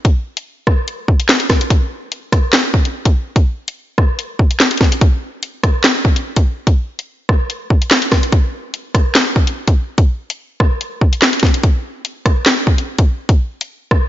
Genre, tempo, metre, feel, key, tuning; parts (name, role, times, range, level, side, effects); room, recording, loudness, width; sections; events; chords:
hip hop; 145 BPM; 4/4; half-time
drill drum kit; drums; 0.0-14.0 s; handclaps, hi-hat, kick drum, rim click, snare drum; -12 LUFS; equal; vintage 12-bit sampler grit
light reverb, digital ambience; nothing above 7.5 kHz; -13 LUFS; side -13 dB against mid
0.0-14.1 A section